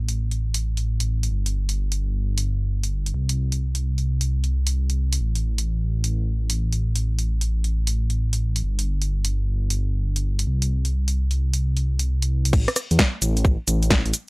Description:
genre	UK garage, two-step garage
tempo	131 BPM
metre	4/4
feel	swing 65% on 16ths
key	A minor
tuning	A4 = 440 Hz
part	dark detuned saw bass	bass	0.0-14.1 s	G1 to E2	-21 LUFS	equal	none
part	punchy analog drum machine	drums	0.1-14.3 s	crash cymbal, hi-hat, rim click, shaker, snare drum	-25 LUFS	equal	none
part	electronic kick drum	drums	12.5-14.0 s	none	-19 LUFS	equal	overdrive
room	little or no reverb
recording	dry, gritty hardware recording, transformer saturation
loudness	-21 LUFS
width	side -28 dB against mid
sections	0.0-12.5 A section; 12.5-14.3 B section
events	drop 12.5-14.3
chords	none

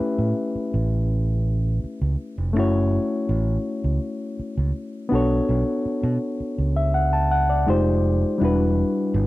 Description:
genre	lush 1970s-style soul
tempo	82 BPM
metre	4/4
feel	straight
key	unclear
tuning	A4 = 440 Hz
part	reed electric piano	accompaniment	0.0-9.3 s	G3 to A5	-23 LUFS	left 2 dB	overdrive
part	fingered electric bass	bass	0.0-9.3 s	E1 to B2	-22 LUFS	right 1 dB	none
room	little or no reverb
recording	dry, close 1970s-style studio recording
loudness	-20 LUFS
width	side -17 dB against mid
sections	0.0-9.3 A section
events	none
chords	0.0 A9; 2.6 F#m7; 5.1 Bm9; 7.7 Fm9; 8.4 Em9

